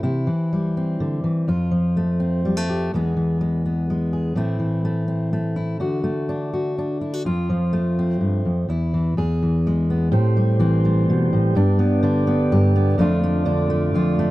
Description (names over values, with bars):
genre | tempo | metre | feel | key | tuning
acoustic folk duo or small band | 125 BPM | 3/4 | straight | A minor | A4 = 440 Hz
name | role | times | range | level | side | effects
fingerpicked steel-string acoustic guitar | accompaniment | 0.0-14.3 s | E2 to G#4 | -19 LUFS | equal | none
mellow tonewheel organ | sustained chords | 10.1-14.3 s | F2 to D5 | -24 LUFS | right 3 dB | slow rotary speaker
room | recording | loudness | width
light reverb | dry, close 1970s-style studio recording | -18 LUFS | side -17 dB against mid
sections
0.0-10.1 A section; 10.1-14.3 B section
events
none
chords
0.0 C; 1.5 F; 2.9 E; 4.4 Am; 5.8 D; 7.2 F; 8.7 N.C.; 9.2 E; 10.1 Am7; 11.6 G; 13.0 Dm/F